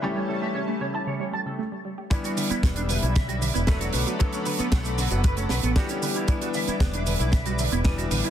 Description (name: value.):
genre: nu-disco, nu disco.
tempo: 115 BPM.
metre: 4/4.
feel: straight.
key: E dorian.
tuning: A4 = 440 Hz.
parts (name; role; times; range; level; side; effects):
bright grand piano; accompaniment; 0.0-8.3 s; D3 to A4; -30 LUFS; left 3 dB; ping-pong delay.
lush unison pad; sustained chords; 0.0-8.3 s; G3 to D6; -35 LUFS; left 1 dB; chorus, vintage 12-bit sampler grit, sidechain pumping.
wide unison pluck; arpeggios; 0.0-8.3 s; C#3 to G4; -32 LUFS; right 5 dB; sidechain pumping, ping-pong delay.
electric guitar with an envelope filter; riff; 0.0-8.3 s; F#3 to A5; -33 LUFS; right 2 dB; ensemble chorus, ping-pong delay.
kick drum; drums; 2.1-8.0 s; none; -22 LUFS; equal; none.
tight funk drum kit; drums; 2.1-8.3 s; cabasa, hi-hat, snare drum; -30 LUFS; right 3 dB; none.
fingered electric bass with an envelope filter; bass; 2.5-8.2 s; E1 to B1; -26 LUFS; equal; none.
room: little or no reverb.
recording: dense, heavily limited modern master.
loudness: -22 LUFS.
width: side -10 dB against mid.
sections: 0.0-2.1 A section; 2.1-8.3 B section.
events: filter sweep on clean electric guitar 0.0-2.1; filter sweep on analog synth pad 0.0-2.1; break 1.6-2.1; drop 2.1-8.3.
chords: 0.0 A7; 2.1 Em7; 3.9 Bm7; 6.0 Em7.